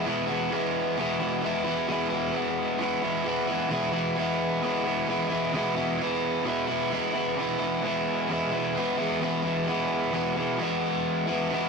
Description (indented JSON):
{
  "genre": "rock",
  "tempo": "131 BPM",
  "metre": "4/4",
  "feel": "straight",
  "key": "E major",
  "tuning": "A4 = 441 Hz",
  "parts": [
    { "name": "overdriven electric guitar", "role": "solo", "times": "0.0-11.7 s", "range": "E2 to E4", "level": "-25 LUFS", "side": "equal", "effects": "none" }
  ],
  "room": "moderate studio reverb, RT60 0.6 s",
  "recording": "rough rehearsal-room recording, tube saturation",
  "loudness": "-25 LUFS",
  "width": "side -4 dB against mid",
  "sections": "0.0-10.1 A section; 10.1-11.7 B section",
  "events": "none",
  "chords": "0.0 E"
}